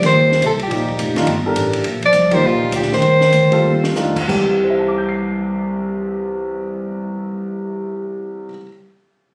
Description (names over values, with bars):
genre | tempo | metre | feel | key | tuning
modal jazz | 178-210 BPM | 4/4 | swing 62% on 8ths | C mixolydian | A4 = 440 Hz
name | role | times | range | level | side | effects
clear soprano saxophone | melody | 0.0-3.9 s | F4 to D5 | -17 LUFS | equal | none
dark bass clarinet | second line | 0.0-3.9 s | Bb2 to F3 | -21 LUFS | equal | none
warm concert grand piano | accompaniment | 0.0-8.7 s | C2 to C7 | -22 LUFS | equal | none
upright bass | bass | 0.0-8.4 s | F1 to F2 | -27 LUFS | equal | none
compact cocktail drum kit | drums | 0.0-4.4 s | crash cymbal, hi-hat, kick drum, ride cymbal, snare drum, splash cymbal | -28 LUFS | equal | none
room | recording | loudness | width
light reverb | recorded on a phone in the room, studio reverb, compression | -18 LUFS | mono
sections
0.0-4.3 A section; 4.3-7.0 B section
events
slowing down 1.9-4.3; drum fill 3.6-4.0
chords
0.0 F9sus4; 4.3 C